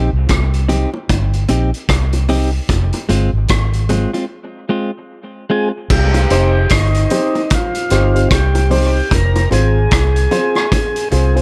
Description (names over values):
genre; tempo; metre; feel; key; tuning
dub reggae; 75 BPM; 4/4; swing 60% on 16ths; C minor; A4 = 445 Hz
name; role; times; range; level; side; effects
clean electric guitar; accompaniment; 0.0-5.7 s; Ab3 to G4; -23 LUFS; equal; dub echo
vintage muted fingered electric bass; bass; 0.0-11.4 s; F1 to C2; -17 LUFS; equal; none
vintage drum kit; drums; 0.3-11.4 s; crash cymbal, hi-hat, kick drum, rim click; -20 LUFS; equal; none
bongos; percussion; 0.3-10.9 s; none; -29 LUFS; equal; none
tonewheel organ; melody; 5.5-11.1 s; Eb4 to Bb4; -22 LUFS; equal; slow rotary speaker, dub echo
dark baby grand piano; stabs; 6.3-11.4 s; C4 to C5; -22 LUFS; equal; dub echo
room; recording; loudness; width
little or no reverb; none; -15 LUFS; mono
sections
0.0-5.9 A section; 5.9-11.4 B section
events
break 0.0-5.9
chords
0.0 Cm; 2.7 Fm; 5.9 Cm; 9.1 Fm